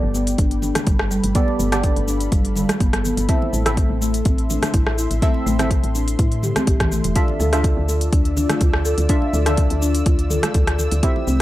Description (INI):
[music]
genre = afro house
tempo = 124 BPM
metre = 4/4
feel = swing 53% on 16ths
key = unclear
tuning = A4 = 438 Hz
[part]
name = dark analog pad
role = sustained chords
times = 0.0-11.4 s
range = F4 to E6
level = -32 LUFS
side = right 1 dB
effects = chorus, vintage 12-bit sampler grit, sidechain pumping
[part]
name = deep mellow chord stab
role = stabs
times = 0.0-11.4 s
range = B3 to E5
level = -26 LUFS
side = right 2 dB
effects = chorus, sidechain pumping, tape echo
[part]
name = woody FM bass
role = bass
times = 0.0-11.4 s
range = E1 to A2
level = -22 LUFS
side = equal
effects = transformer saturation, sidechain pumping
[part]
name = buzzing marimba with soft mallets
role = arpeggios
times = 0.1-11.4 s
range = E3 to A4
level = -24 LUFS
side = left 2 dB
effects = sidechain pumping, low-pass filter, tape echo
[part]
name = afro-pop drum kit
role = drums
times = 0.1-11.4 s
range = hi-hat, rim click, shaker, toms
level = -25 LUFS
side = left 1 dB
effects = none
[part]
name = congas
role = percussion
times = 0.1-11.4 s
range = none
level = -31 LUFS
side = right 4 dB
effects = none
[part]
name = electronic kick drum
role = drums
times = 0.4-11.1 s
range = none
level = -18 LUFS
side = equal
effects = none
[sound]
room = little or no reverb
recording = dry, gritty hardware recording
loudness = -16 LUFS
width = side -15 dB against mid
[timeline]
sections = 0.0-11.4 A section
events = filter sweep on marimba 0.0-11.4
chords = 0.0 Gadd9; 3.3 Am; 7.2 Dmadd9